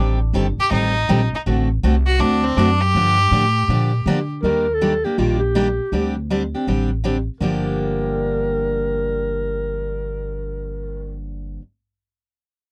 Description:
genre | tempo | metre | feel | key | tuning
acoustic string swing (jazz manouche) | 161 BPM | 4/4 | swing 63% on 8ths | G minor | A4 = 440 Hz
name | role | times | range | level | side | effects
picked steel-string acoustic guitar | accompaniment | 0.0-11.6 s | G2 to A4 | -25 LUFS | equal | none
upright bass | bass | 0.0-11.6 s | G1 to D3 | -24 LUFS | equal | none
clear violin | melody | 0.6-4.3 s | C4 to G4 | -22 LUFS | equal | none
breathy clarinet | second line | 4.4-11.2 s | F4 to Bb4 | -25 LUFS | equal | none
room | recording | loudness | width
little or no reverb | dry, close 1970s-style studio recording | -19 LUFS | mono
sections
0.0-4.4 A section; 4.4-7.4 B section; 7.4-10.4 C section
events
none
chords
0.0 Am7b5; 1.5 D7; 2.9 Gm7; 4.4 Ebmaj7; 5.9 D7sus4; 7.4 Gm7

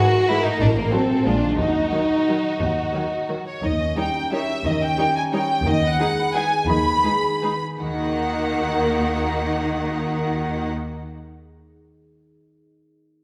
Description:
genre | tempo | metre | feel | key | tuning
classical | 154-203 BPM | 3/4 | rubato | Eb minor | A4 = 440 Hz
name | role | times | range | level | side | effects
warm symphonic violin section | melody | 0.0-10.7 s | F4 to Cb6 | -27 LUFS | equal | none
rich symphonic violin section | second line | 0.0-10.7 s | Bb3 to Db5 | -30 LUFS | equal | none
rich symphonic viola section | accompaniment | 0.0-10.7 s | Eb3 to Eb4 | -31 LUFS | equal | none
mellow French horn section | sustained chords | 0.0-3.3 s | Bb3 to Gb4 | -26 LUFS | equal | none
concert harp | arpeggios | 0.0-11.7 s | G#2 to Cb6 | -32 LUFS | equal | none
rich studio double bass section | bass | 0.6-10.7 s | A1 to Eb2 | -30 LUFS | equal | none
rich symphonic cello section | bass | 0.6-10.7 s | Eb2 to Eb3 | -29 LUFS | equal | none
room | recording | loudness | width
wet scoring stage reverb, RT60 1.6 s | none | -22 LUFS | mono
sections
0.0-3.6 A section; 3.6-7.8 B section; 7.8-9.9 C section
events
slowing down 5.2-7.8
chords
0.0 E/G#; 0.6 Adim7; 1.3 Bb7; 1.6 Ebm; 3.6 Eb7; 5.7 Abm/Eb; 7.8 Ebm

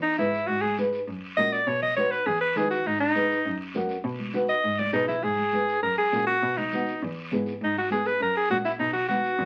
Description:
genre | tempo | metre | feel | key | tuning
latin, cumbia | 202 BPM | 4/4 | straight | G# minor | A4 = 440 Hz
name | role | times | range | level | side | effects
edgy alto saxophone | melody | 0.0-9.5 s | D#4 to D#5 | -26 LUFS | equal | none
nylon-string guitar | accompaniment | 0.2-9.3 s | A#3 to B4 | -32 LUFS | equal | none
rich cello | bass | 0.2-9.5 s | E2 to D#3 | -36 LUFS | equal | none
congas | percussion | 0.2-9.2 s | none | -38 LUFS | equal | none
guiro | percussion | 0.2-9.5 s | none | -45 LUFS | equal | none
room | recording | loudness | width
wet small room reverb, RT60 0.5 s | very old 78 rpm record, vinyl crackle, faint mains hum | -26 LUFS | mono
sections
0.0-5.2 A section; 5.2-9.5 B section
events
alto saxophone solo 0.0-5.2; drum fill 4.8-5.2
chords
0.5 G#m; 1.1 F#; 1.7 B; 2.3 E; 2.9 G#m; 3.5 F#; 4.0 B; 4.6 G#m; 5.8 F#; 6.4 B; 7.0 E; 7.6 G#m; 8.2 F#; 8.8 B

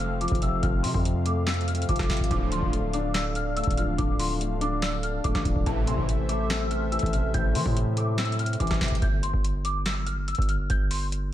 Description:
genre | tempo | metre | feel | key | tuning
hip hop, trap | 143 BPM | 4/4 | half-time | unclear | A4 = 440 Hz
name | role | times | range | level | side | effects
worn celesta | melody | 0.0-11.1 s | A5 to G6 | -32 LUFS | left 1 dB | ensemble chorus, low-pass filter, ping-pong delay
felt-muted upright piano | accompaniment | 0.0-9.0 s | F2 to D5 | -32 LUFS | left 4 dB | low-pass filter
warm analog pad | sustained chords | 0.0-9.0 s | D3 to F5 | -33 LUFS | equal | chorus
distorted 808-style bass | bass | 0.0-11.3 s | D1 to E3 | -28 LUFS | equal | distortion
booming analog drum machine | drums | 0.0-11.2 s | handclaps, hi-hat, kick drum, rim click, snare drum | -28 LUFS | equal | vintage 12-bit sampler grit
big bright polysynth | stabs | 2.3-2.7, 5.7-6.1 s | C2 to F3 | -34 LUFS | equal | chorus, ping-pong delay
room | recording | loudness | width
light reverb | none | -23 LUFS | side -12 dB against mid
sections
0.0-9.0 A section; 9.0-11.3 B section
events
none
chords
0.0 F; 2.3 Dm; 5.7 Am; 9.0 G5

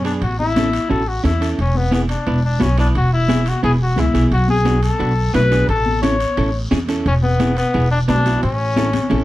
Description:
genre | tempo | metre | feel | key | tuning
latin, cumbia | 176 BPM | 4/4 | straight | A major | A4 = 440 Hz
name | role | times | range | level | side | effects
warm trumpet | second line | 0.0-9.2 s | B3 to C#5 | -20 LUFS | left 3 dB | none
clean electric guitar | accompaniment | 0.0-9.2 s | B3 to B4 | -21 LUFS | right 3 dB | none
upright bass | bass | 0.0-9.2 s | E1 to F#2 | -18 LUFS | equal | none
timbales | percussion | 0.0-9.2 s | none | -33 LUFS | right 4 dB | none
guiro | percussion | 0.1-9.2 s | none | -37 LUFS | left 2 dB | none
congas | percussion | 0.4-9.2 s | none | -24 LUFS | left 3 dB | none
room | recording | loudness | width
light reverb | dark, warm production | -15 LUFS | side -16 dB against mid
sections
0.0-9.2 A section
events
trumpet solo 0.0-9.2; drum fill 8.9-9.2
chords
0.2 A; 1.6 E; 4.3 Bm; 5.7 A; 7.1 E; 8.4 A

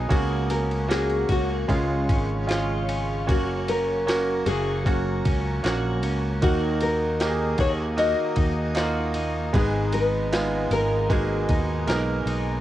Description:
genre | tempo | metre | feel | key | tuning
pop ballad | 77 BPM | 4/4 | straight | F# major | A4 = 439 Hz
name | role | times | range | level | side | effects
clear concert grand piano | accompaniment | 0.0-12.6 s | G#2 to B4 | -27 LUFS | right 4 dB | cassette tape
glassy FM pad | sustained chords | 0.0-12.6 s | G#4 to D#6 | -36 LUFS | equal | ensemble chorus, built-in reverb, cassette tape
twelve-string electric guitar | arpeggios | 0.0-12.6 s | F#2 to A#4 | -34 LUFS | left 5 dB | spring reverb, cassette tape
fretless electric bass | bass | 0.0-12.6 s | F#1 to D#2 | -27 LUFS | equal | analog chorus
nylon-string guitar | melody | 0.1-12.2 s | E#4 to D#5 | -27 LUFS | left 2 dB | cassette tape
jungle sampler-style drum kit | drums | 0.1-12.5 s | kick drum, ride cymbal, snare drum | -28 LUFS | equal | cassette tape
room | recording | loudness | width
little or no reverb | home recording on cassette | -21 LUFS | side -13 dB against mid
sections
0.0-12.6 A section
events
none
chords
0.1 F#/C#; 1.7 C#; 3.3 F#; 6.4 D#m; 9.5 G#madd9

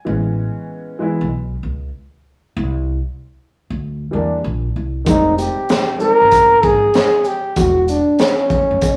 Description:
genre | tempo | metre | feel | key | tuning
hip hop, jazz-hop | 96 BPM | 4/4 | swing 65% on 16ths | unclear | A4 = 440 Hz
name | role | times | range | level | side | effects
warm upright piano | accompaniment | 0.0-6.9 s | Eb3 to E4 | -24 LUFS | equal | none
upright bass | bass | 0.1-9.0 s | E1 to E2 | -25 LUFS | equal | none
warm trombone | melody | 5.1-9.0 s | C#4 to Bb4 | -15 LUFS | equal | none
crunchy breakbeat drum kit | drums | 5.1-9.0 s | hi-hat, kick drum, shaker, snare drum | -21 LUFS | equal | none
room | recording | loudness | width
moderate stone room reverb, RT60 1.1 s | rough rehearsal-room recording, tube saturation, studio ambience | -16 LUFS | mono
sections
0.0-9.0 A section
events
none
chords
0.1 Amaj9; 2.6 C7; 5.1 Fm9; 7.6 E7sus2

